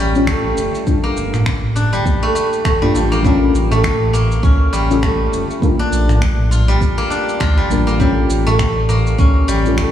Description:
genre	organic downtempo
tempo	101 BPM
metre	4/4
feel	swing 58% on 16ths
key	A phrygian dominant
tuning	A4 = 442 Hz
part	deep mellow chord stab	accompaniment	0.0-9.9 s	G3 to Bb4	-20 LUFS	left 2 dB	chorus, phaser, sidechain pumping, tape echo
part	steel-string zither	arpeggios	0.0-9.9 s	G3 to F4	-18 LUFS	equal	tape echo
part	warm sub bass	bass	0.0-9.9 s	D1 to G2	-17 LUFS	equal	sidechain pumping
part	electronic shaker and finger snaps	drums	0.2-9.9 s	none	-28 LUFS	right 1 dB	none
part	electronic kick drum	drums	0.3-9.9 s	none	-18 LUFS	equal	none
part	darbuka	percussion	0.4-9.6 s	none	-22 LUFS	equal	none
room	light reverb, digital ambience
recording	played on a big sound system in a bare room, stone room reverb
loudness	-13 LUFS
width	side -10 dB against mid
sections	0.0-9.9 A section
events	none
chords	0.0 A7b9b13; 0.9 Gm9; 3.2 A7b9b13; 5.6 Bb6; 8.0 A7b9b13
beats	0.28 | 0.87 1.47 2.06 2.65 | 3.25 3.84 4.43 5.03 | 5.62 6.22 6.81 7.41 | 8.00 8.59 9.19 9.78

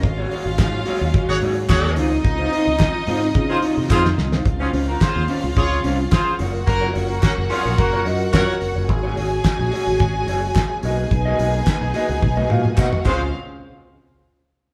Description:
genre	disco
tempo	108 BPM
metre	4/4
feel	straight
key	Db major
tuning	A4 = 443 Hz
part	warm studio violin section	second line	0.0-13.3 s	Db4 to Ab5	-30 LUFS	equal	none
part	mellow electric guitar	accompaniment	0.0-13.2 s	Db4 to F5	-28 LUFS	equal	tube saturation
part	warm studio string section	sustained chords	0.0-13.3 s	Db3 to Bb4	-30 LUFS	equal	none
part	fingered electric bass	bass	0.0-13.3 s	Gb1 to Db3	-26 LUFS	equal	none
part	damped 70s drum kit	drums	0.0-13.2 s	crash cymbal, hi-hat, kick drum, snare drum, toms	-23 LUFS	equal	none
part	group handclap	percussion	0.6-13.3 s	none	-38 LUFS	equal	none
part	warm horn section	stabs	1.3-8.6, 13.1-13.2 s	Ab3 to Db5	-26 LUFS	equal	none
room	wet large studio reverb, RT60 1.4 s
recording	band playing live in one room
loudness	-19 LUFS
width	mono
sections	0.0-4.5 A section; 4.5-13.3 B section; 13.3-14.7 C section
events	drum fill 3.9-4.5, 12.2-13.3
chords	0.0 Ab7sus4; 2.0 Dbmaj9; 4.5 Dbmaj7; 6.4 Gbmaj7; 8.9 Ab7sus4; 10.8 Cbmaj7; 13.1 Dbmaj7; 13.3 N.C.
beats	| 0.03 0.59 1.14 1.69 | 2.25 2.80 3.35 3.90 | 4.46 5.01 5.57 6.12 | 6.67 7.23 7.78 8.34 | 8.89 9.45 10.00 10.56 | 11.11 11.67 12.22 12.78

